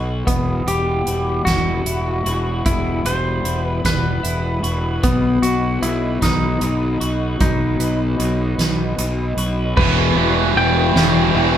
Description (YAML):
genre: post-rock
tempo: 51 BPM (dotted quarters)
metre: 6/8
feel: straight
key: E harmonic minor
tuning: A4 = 442 Hz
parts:
  - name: hollow soft pad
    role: sustained chords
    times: 0.0-11.6 s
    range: G3 to B5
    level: -29 LUFS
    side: right 1 dB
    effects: chorus
  - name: twelve-string electric guitar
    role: arpeggios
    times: 0.0-11.6 s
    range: E2 to F#4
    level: -26 LUFS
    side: left 6 dB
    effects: spring reverb
  - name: fuzz fingered electric bass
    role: bass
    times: 0.0-11.6 s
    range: E1 to B1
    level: -21 LUFS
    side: equal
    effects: overdrive
  - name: clean lap steel guitar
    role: melody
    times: 0.3-11.6 s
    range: B3 to G5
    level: -22 LUFS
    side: equal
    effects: none
  - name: soft-mallet drum kit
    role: drums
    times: 0.3-11.5 s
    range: crash cymbal, hi-hat, kick drum, ride cymbal, snare drum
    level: -21 LUFS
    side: equal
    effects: none
  - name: distorted electric guitar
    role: riff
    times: 9.8-11.6 s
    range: E2 to E3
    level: -19 LUFS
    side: right 9 dB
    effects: overdrive
  - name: overdriven semi-hollow guitar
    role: riff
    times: 9.8-11.6 s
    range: E3 to E4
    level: -21 LUFS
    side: left 7 dB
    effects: none
room: moderate large studio reverb, RT60 0.9 s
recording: band playing live in one room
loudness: -16 LUFS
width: side -10 dB against mid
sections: 0.0-9.8 A section; 9.8-11.6 B section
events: none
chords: 0.3 Emadd9; 5.0 B; 9.8 Em